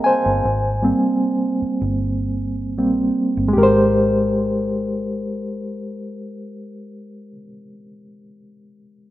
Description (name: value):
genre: lush 1970s-style soul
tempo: 77 BPM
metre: 4/4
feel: straight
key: Ab major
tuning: A4 = 440 Hz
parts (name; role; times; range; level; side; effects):
- reed electric piano; accompaniment; 0.0-9.1 s; G3 to Bb5; -18 LUFS; equal; overdrive, fast tremolo
- vintage muted fingered electric bass; bass; 0.3-7.4 s; G1 to Bb1; -24 LUFS; equal; none
room: moderate lush hall reverb, RT60 2.4 s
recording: rough home demo mix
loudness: -17 LUFS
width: side -14 dB against mid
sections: 0.0-3.6 A section; 3.6-6.7 B section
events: reed electric piano solo 0.0-3.6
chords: 0.0 Abmaj9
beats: | 0.44 1.22 2.00 2.78 | 3.56 4.34 5.12 5.90